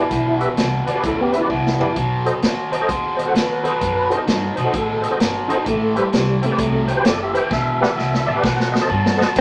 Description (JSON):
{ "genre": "electric blues shuffle", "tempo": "130 BPM", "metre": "4/4", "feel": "swing 64% on 8ths", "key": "unclear", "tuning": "A4 = 440 Hz", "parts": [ { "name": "tonewheel organ", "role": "accompaniment", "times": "0.0-9.3 s", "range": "C3 to A5", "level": "-22 LUFS", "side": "equal", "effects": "slow rotary speaker, chorus vibrato" }, { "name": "biting overdriven guitar", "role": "riff", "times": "0.0-9.4 s", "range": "E2 to G#3", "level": "-25 LUFS", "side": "equal", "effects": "none" }, { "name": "upright bass", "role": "bass", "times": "0.1-9.4 s", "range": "E1 to B2", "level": "-28 LUFS", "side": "equal", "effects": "none" }, { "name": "vintage drum kit", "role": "drums", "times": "0.1-9.4 s", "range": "crash cymbal, hi-hat, kick drum, snare drum, toms", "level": "-24 LUFS", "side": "equal", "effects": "none" } ], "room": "wet studio ambience, RT60 0.5 s", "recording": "none", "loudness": "-19 LUFS", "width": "mono", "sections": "0.0-9.4 A section", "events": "drum fill 1.5-2.0, 7.5-9.4; tonewheel organ fill 8.0-9.4", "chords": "0.0 Em7; 2.0 B7b9; 5.7 Am7; 7.5 Em7; 8.4 B7b9", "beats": "| 0.11 0.58 1.04 1.50 | 1.96 2.43 2.89 3.35 | 3.81 4.28 4.74 5.20 | 5.66 6.12 6.59 7.05 | 7.51 7.97 8.43 8.89 | 9.36" }